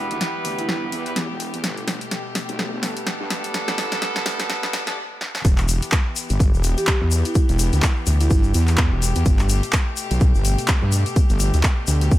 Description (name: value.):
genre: bass house.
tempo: 126 BPM.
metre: 4/4.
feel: swing 58% on 16ths.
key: E minor.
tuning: A4 = 438 Hz.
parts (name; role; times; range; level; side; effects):
rich chamber string section; sustained chords; 0.0-12.2 s; B2 to A4; -31 LUFS; left 3 dB; sidechain pumping.
clear horn section; stabs; 0.0-5.0 s; G3 to B4; -29 LUFS; right 2 dB; sidechain pumping, low-pass filter, tape echo.
wobble bass; bass; 0.0-12.1 s; E1 to G2; -21 LUFS; equal; chorus, overdrive, sidechain pumping, high-pass filter.
house drum kit; drums; 0.1-12.2 s; handclaps, hi-hat, snare drum; -25 LUFS; equal; none.
marimba with soft mallets; melody; 0.6-1.3, 6.8-8.9 s; B3 to G4; -29 LUFS; right 2 dB; tape echo.
electronic kick drum; drums; 5.4-12.2 s; none; -18 LUFS; equal; none.
tube shaker; percussion; 5.5-12.2 s; none; -30 LUFS; left 6 dB; none.
room: small room reverb.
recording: high-pass filter.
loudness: -18 LUFS.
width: side -15 dB against mid.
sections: 0.0-5.4 A section; 5.4-12.2 B section.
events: build-up 0.0-5.4; drum fill 0.0-5.0, 5.2; filter sweep 0.0-5.4; break 5.0-5.4; drop 5.4-12.2.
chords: 0.0 Em; 1.6 Gadd9; 5.4 Em; 9.3 Gadd9.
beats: 0.21 0.69 1.16 | 1.64 2.12 2.59 3.07 | 3.54 4.02 4.50 4.97 | 5.45 5.92 6.40 6.88 | 7.35 7.83 8.30 8.78 | 9.26 9.73 10.21 10.69 | 11.16 11.64 12.12.